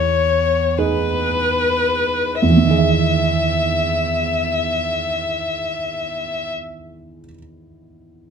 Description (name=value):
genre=neoclassical piano and strings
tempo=35-42 BPM (dotted quarters)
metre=6/8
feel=rubato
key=E major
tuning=A4 = 440 Hz
part: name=dark violin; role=melody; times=0.0-6.5 s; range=B4 to E5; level=-19 LUFS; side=left 3 dB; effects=none
part: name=dark upright piano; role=accompaniment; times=0.0-8.3 s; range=E2 to E5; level=-19 LUFS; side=right 4 dB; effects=none
room=light reverb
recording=close, detailed microphones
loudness=-16 LUFS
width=side -6 dB against mid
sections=0.0-2.4 A section; 2.4-5.7 B section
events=slowing down 0.0-2.4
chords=0.0 Emaj7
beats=0.78 | 2.42 4.09